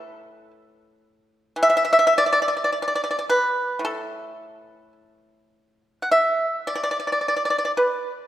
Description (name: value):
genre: chinese traditional, Chinese solo plucked strings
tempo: 54 BPM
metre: 2/4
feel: rubato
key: unclear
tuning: A4 = 439 Hz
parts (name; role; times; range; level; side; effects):
- pipa; solo; 0.0-8.3 s; A2 to F#5; -19 LUFS; equal; none
room: wet scoring stage reverb, RT60 1.9 s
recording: recorded in a church or concert hall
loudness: -19 LUFS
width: side -12 dB against mid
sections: 0.0-8.3 A section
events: none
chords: none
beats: 0.54 | 1.60 2.71 | 3.83 4.95 | 6.09 7.21